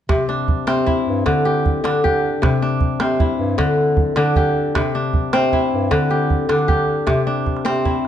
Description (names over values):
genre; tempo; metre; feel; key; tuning
west african traditional, West African string and xylophone music; 103 BPM (dotted quarters); 12/8; straight; C major; A4 = 441 Hz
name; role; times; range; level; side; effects
kora; arpeggios; 0.1-8.1 s; C3 to G4; -18 LUFS; left 2 dB; none
mellow bass clarinet; bass; 0.1-8.1 s; G2 to D3; -22 LUFS; right 2 dB; none
calabash; percussion; 0.1-8.1 s; none; -22 LUFS; right 2 dB; none
room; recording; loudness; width
light reverb; dark, warm production; -16 LUFS; side -10 dB against mid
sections
0.1-8.1 A section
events
none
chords
0.1 C; 1.3 Dsus4; 2.4 C; 3.6 Dsus4; 4.8 C; 5.9 Dsus4; 7.1 C